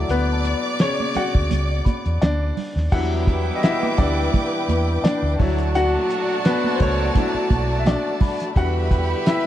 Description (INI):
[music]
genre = lush 1970s-style soul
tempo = 85 BPM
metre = 4/4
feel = swing 54% on 16ths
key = E dorian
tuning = A4 = 440 Hz
[part]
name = rich studio violin section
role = second line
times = 0.0-9.5 s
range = F#4 to D6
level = -27 LUFS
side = equal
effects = none
[part]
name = clear grand piano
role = accompaniment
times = 0.0-9.5 s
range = C#3 to F#5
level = -24 LUFS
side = left 4 dB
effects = none
[part]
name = vintage muted fingered electric bass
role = bass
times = 0.0-9.1 s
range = B1 to E2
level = -22 LUFS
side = equal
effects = none
[part]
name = small celesta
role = texture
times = 0.0-8.9 s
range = F#5 to B5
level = -38 LUFS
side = left 3 dB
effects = none
[part]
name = cloth-damped thuddy drum kit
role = drums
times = 0.1-9.4 s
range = crash cymbal, hi-hat, kick drum, snare drum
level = -20 LUFS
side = equal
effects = none
[part]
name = congas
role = percussion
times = 0.1-8.7 s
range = none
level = -30 LUFS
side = right 6 dB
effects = none
[part]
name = percussive tonewheel organ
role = sustained chords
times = 2.9-9.5 s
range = D3 to F#4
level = -31 LUFS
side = left 1 dB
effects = slow rotary speaker
[part]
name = clear horn section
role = stabs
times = 2.9-9.5 s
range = F#3 to B4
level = -28 LUFS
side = right 5 dB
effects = none
[sound]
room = little or no reverb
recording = dark, warm production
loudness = -18 LUFS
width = side -12 dB against mid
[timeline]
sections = 0.0-2.9 A section; 2.9-9.5 B section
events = grand piano solo 0.0-2.9, 2.9-9.5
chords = 0.0 Dmaj7; 2.9 Em7; 5.4 Dmaj7; 8.6 Em7